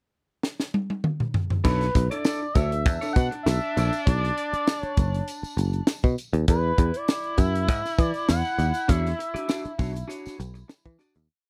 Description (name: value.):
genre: funk.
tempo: 99 BPM.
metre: 4/4.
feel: straight.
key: B dorian.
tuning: A4 = 443 Hz.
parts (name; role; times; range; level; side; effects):
crisp fusion drum kit; drums; 0.4-11.3 s; crash cymbal, hi-hat, kick drum, snare drum, toms; -25 LUFS; equal; none.
expressive synth lead; melody; 1.6-10.1 s; B4 to F#5; -32 LUFS; equal; chorus.
clean electric guitar; accompaniment; 1.6-4.0, 8.9-11.2 s; D4 to D5; -35 LUFS; equal; none.
tambourine; percussion; 1.6-11.3 s; none; -47 LUFS; equal; none.
picked electric bass; bass; 1.7-11.3 s; F#1 to E3; -27 LUFS; equal; none.
clear baritone saxophone; second line; 2.9-11.0 s; D4 to E4; -37 LUFS; equal; none.
room: little or no reverb.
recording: dry, close 1970s-style studio recording.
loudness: -25 LUFS.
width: mono.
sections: 0.0-1.6 pickup bar; 1.6-11.3 A section.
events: drum fill 0.4-1.6; fade-out 8.9-11.3.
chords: 0.0 N.C.; 1.6 Bm11; 6.5 E13.